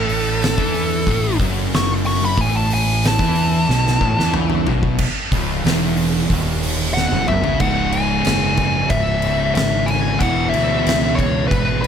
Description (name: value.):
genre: stoner and doom metal.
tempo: 92 BPM.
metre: 4/4.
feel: straight.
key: C# minor.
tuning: A4 = 440 Hz.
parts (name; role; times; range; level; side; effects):
fuzz lead guitar; melody; 0.0-11.9 s; A4 to C#6; -21 LUFS; left 1 dB; wah, distortion, tape echo.
overdriven semi-hollow guitar; riff; 0.0-11.9 s; C#2 to E3; -26 LUFS; right 1 dB; none.
thick fuzz guitar; riff; 0.0-11.9 s; C#2 to E3; -24 LUFS; left 6 dB; distortion.
thick fuzz guitar; riff; 0.0-11.9 s; C#2 to E3; -24 LUFS; right 8 dB; distortion.
fuzz fingered electric bass; bass; 0.0-11.9 s; C#1 to E2; -24 LUFS; equal; overdrive.
oversized low-tuned drum kit; drums; 0.1-11.9 s; crash cymbal, hi-hat, kick drum, snare drum, toms; -21 LUFS; equal; none.
room: small room ambience.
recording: none.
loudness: -15 LUFS.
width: side -8 dB against mid.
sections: 0.0-5.0 A section; 5.0-7.6 B section; 7.6-11.9 C section.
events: lead electric guitar solo 0.0-5.0; drum fill 3.7-5.0, 7.0-7.6.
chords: 0.0 A5; 5.0 C#m; 10.2 E.